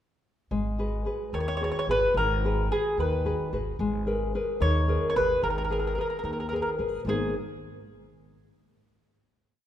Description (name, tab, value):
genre	italian folk, Italian serenade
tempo	73 BPM (dotted quarters)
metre	6/8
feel	straight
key	G# minor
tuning	A4 = 440 Hz
part	nylon-string guitar	accompaniment	0.5-7.3 s	G#2 to B4	-29 LUFS	left 1 dB	none
part	upright bass	bass	0.5-7.3 s	G#1 to D#2	-30 LUFS	equal	none
part	mandolin	melody	1.3-7.3 s	G#4 to C#5	-28 LUFS	equal	none
room	moderate concert hall reverb, RT60 2.3 s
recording	minimal, uncompressed stereo recording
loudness	-25 LUFS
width	side -11 dB against mid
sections	0.5-7.1 A section; 7.1-8.7 final chord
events	none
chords	0.5 G#m7; 3.8 G#madd9